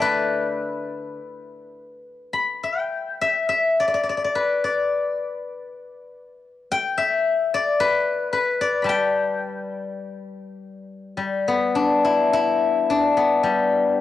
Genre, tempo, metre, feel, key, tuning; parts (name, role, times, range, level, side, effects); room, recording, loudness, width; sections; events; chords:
chinese traditional, Chinese solo plucked strings; 51-57 BPM; 2/4; rubato; G gong mode; A4 = 438 Hz
steel-string zither; solo; 0.0-14.0 s; D3 to B5; -20 LUFS; left 3 dB; cassette tape
light reverb, studio ambience; home recording on cassette; -19 LUFS; side -13 dB against mid
0.0-11.2 A section; 11.2-14.0 B section